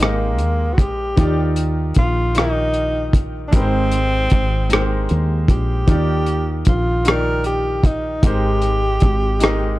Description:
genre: slow six-eight R&B.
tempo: 51 BPM (dotted quarters).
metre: 6/8.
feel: straight.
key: Eb major.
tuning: A4 = 441 Hz.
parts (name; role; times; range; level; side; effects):
breathy tenor saxophone; melody; 0.0-9.8 s; Bb3 to Bb4; -22 LUFS; equal; none.
bright concert grand piano; accompaniment; 0.0-9.8 s; Eb3 to Eb5; -25 LUFS; equal; none.
woody fretless electric bass; bass; 0.0-9.8 s; Ab1 to Eb2; -20 LUFS; equal; wide subtle chorus.
cloth-damped thuddy drum kit; drums; 0.0-9.6 s; hi-hat, kick drum, rim click; -16 LUFS; equal; none.
room: light reverb.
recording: dark, warm production.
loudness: -15 LUFS.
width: side -18 dB against mid.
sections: 0.0-9.8 A section.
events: none.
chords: 0.0 Abmaj9; 1.2 Ebmaj9; 3.5 Abmaj9; 5.9 Ebmaj9; 8.2 Abmaj9.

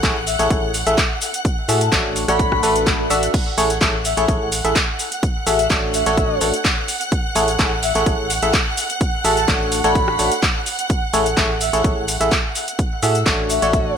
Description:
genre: piano house.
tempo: 127 BPM.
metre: 4/4.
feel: straight.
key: A major.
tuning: A4 = 440 Hz.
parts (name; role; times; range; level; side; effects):
warm symphonic string section; sustained chords; 0.0-14.0 s; F#5 to F#6; -26 LUFS; right 2 dB; sidechain pumping.
barking FM electric piano; riff; 0.0-13.9 s; A3 to E5; -20 LUFS; equal; chorus, sidechain pumping, ping-pong delay.
organ-like FM bass; bass; 0.0-13.9 s; A1 to A2; -26 LUFS; equal; sidechain pumping.
electronic kick drum; drums; 0.0-13.8 s; none; -20 LUFS; equal; none.
house drum kit; drums; 0.0-13.8 s; cabasa, crash cymbal, handclaps, hi-hat, rim click; -21 LUFS; equal; none.
breathy flute-like synth lead; melody; 0.3-14.0 s; E5 to B5; -23 LUFS; left 2 dB; wide subtle chorus, ping-pong delay.
swell; sound effects; 2.6-3.3 s; none; -27 LUFS; right 4 dB; none.
room: light reverb, digital ambience.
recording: none.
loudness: -16 LUFS.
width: side -7 dB against mid.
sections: 0.0-14.0 A section.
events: swell 2.6-3.3.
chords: 0.0 Amaj7; 1.2 F#m9; 2.2 Dmaj7/A; 3.3 Amaj7; 5.0 F#m9; 5.9 Dmaj7/A; 7.1 Amaj7; 8.8 F#m9; 9.7 Dmaj7/A; 10.9 Amaj7; 12.6 F#m9.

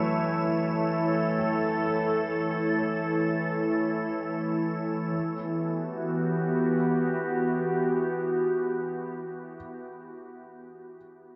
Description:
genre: ambient.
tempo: 64 BPM.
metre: 4/4.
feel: straight.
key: E dorian.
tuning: A4 = 439 Hz.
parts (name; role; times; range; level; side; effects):
evolving wavetable pad; sustained chords; 0.0-9.6 s; E3 to C#5; -29 LUFS; equal; chorus, built-in reverb.
felt-muted upright piano; arpeggios; 0.0-11.4 s; E3 to A5; -46 LUFS; equal; none.
wind-like tuned noise texture; texture; 0.0-5.2 s; E6; -47 LUFS; equal; built-in reverb.
room: wet huge ambient reverb, RT60 8.8 s.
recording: dark, warm production, nothing above 7.6 kHz.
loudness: -28 LUFS.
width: mono.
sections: 0.0-5.1 A section; 5.1-8.9 B section.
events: none.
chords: 0.0 A/E; 5.1 Em.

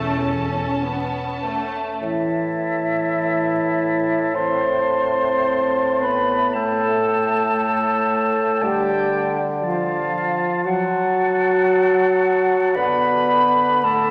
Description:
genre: classical, slow romantic movement for symphony orchestra.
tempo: 47-62 BPM.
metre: 4/4.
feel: rubato.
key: unclear.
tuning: A4 = 442 Hz.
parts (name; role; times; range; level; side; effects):
clear chamber violin section; melody; 0.0-1.8 s; A5; -31 LUFS; equal; none.
clear oboe; second line; 0.0-14.1 s; A4 to B5; -30 LUFS; equal; none.
rich chamber violin section; second line; 0.0-2.0 s; A3 to C#4; -30 LUFS; equal; none.
warm chamber viola section; accompaniment; 0.0-1.8 s; C#4; -31 LUFS; equal; none.
dark studio double bass section; bass; 0.0-0.6 s; E1; -34 LUFS; equal; none.
warm studio cello section; bass; 0.0-0.6 s; E2; -34 LUFS; equal; none.
mellow clarinet; second line; 2.0-14.1 s; E4 to C5; -24 LUFS; equal; none.
silver concert flute; second line; 2.0-14.1 s; E5 to C6; -25 LUFS; equal; none.
mellow bassoon; accompaniment; 2.0-14.1 s; A2 to F#3; -26 LUFS; equal; none.
dark French horn section; sustained chords; 2.0-14.1 s; E3 to C4; -30 LUFS; equal; none.
room: wet scoring stage reverb, RT60 1.9 s.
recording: vinyl crackle.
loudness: -20 LUFS.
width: mono.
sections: 0.0-2.0 A section; 2.0-14.1 B section.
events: none.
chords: 0.0 A; 2.0 N.C.; 6.5 Gsus2/A; 8.6 Dm; 10.7 F#m; 12.8 Bm/D.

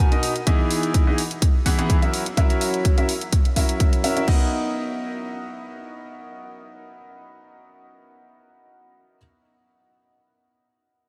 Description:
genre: piano house.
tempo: 126 BPM.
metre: 4/4.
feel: swing 53% on 16ths.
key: B major.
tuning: A4 = 440 Hz.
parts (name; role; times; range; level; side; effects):
bright grand piano; riff; 0.0-9.2 s; B2 to F#5; -27 LUFS; equal; subtle chorus, sidechain pumping, analog delay.
house drum kit; drums; 0.1-4.4 s; crash cymbal, hi-hat; -32 LUFS; equal; overdrive.
electronic kick drum; drums; 0.5-4.4 s; none; -21 LUFS; equal; overdrive.
room: light reverb, studio reverb.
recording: none.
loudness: -21 LUFS.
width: mono.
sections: 0.0-4.3 A section; 4.3-8.1 B section.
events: none.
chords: 0.5 Emaj7; 2.1 F#7; 4.3 Bmaj7.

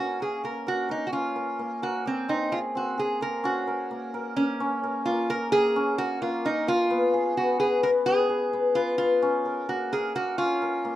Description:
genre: contemporary instrumental, contemporary.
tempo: 259 BPM (eighths).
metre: 5/8.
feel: straight.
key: unclear.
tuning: A4 = 440 Hz.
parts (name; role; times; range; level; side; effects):
lap resonator guitar; melody; 0.0-11.0 s; C4 to Bb4; -27 LUFS; right 1 dB; none.
hammered dulcimer; arpeggios; 0.0-11.0 s; Bb3 to Cb5; -26 LUFS; left 2 dB; none.
room: moderate studio reverb, RT60 0.7 s.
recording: dark, warm production.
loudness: -24 LUFS.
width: side -13 dB against mid.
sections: 0.0-4.6 A section; 4.6-11.0 B section.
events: none.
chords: 0.0 Bbm; 2.3 Ab; 3.4 Gb/Bb; 6.9 Abm6/Cb; 9.2 Bbm7.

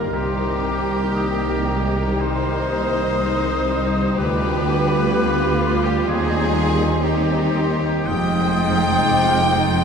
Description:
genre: classical.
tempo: 54-64 BPM.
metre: 4/4.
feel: rubato.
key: unclear.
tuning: A4 = 443 Hz.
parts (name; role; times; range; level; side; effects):
rich studio violin section; melody; 0.0-9.8 s; Eb4 to G4; -29 LUFS; left 4 dB; none.
clear clarinet; second line; 0.0-9.8 s; G4 to G5; -27 LUFS; left 1 dB; none.
clear oboe; second line; 0.0-9.8 s; G4 to G5; -30 LUFS; right 1 dB; none.
hollow concert flute; second line; 0.0-9.8 s; Bb5 to Eb6; -30 LUFS; left 1 dB; none.
rich studio violin section; second line; 0.0-9.8 s; G4 to G5; -26 LUFS; left 2 dB; none.
rich studio viola section; accompaniment; 0.0-9.8 s; G3 to G4; -28 LUFS; equal; none.
dark French horn section; sustained chords; 0.0-9.8 s; C4 to F4; -29 LUFS; left 2 dB; none.
mellow trombone section; sustained chords; 0.0-9.8 s; D3 to Ab3; -30 LUFS; right 4 dB; none.
concert harp; arpeggios; 0.0-9.8 s; F2 to D6; -30 LUFS; left 5 dB; none.
clear trumpet; stabs; 0.0-9.8 s; F4 to Bb4; -31 LUFS; right 2 dB; none.
clear studio cello section; bass; 0.0-9.8 s; C2 to G2; -25 LUFS; right 2 dB; none.
warm studio double bass section; bass; 0.0-9.8 s; F1 to Eb2; -24 LUFS; right 2 dB; none.
room: wet church reverb, RT60 3.4 s.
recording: none.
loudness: -17 LUFS.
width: side -6 dB against mid.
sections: 0.0-9.8 A section.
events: none.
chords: 0.2 Cm7; 4.2 G7/D; 6.1 Cm/Eb; 8.1 Fm7.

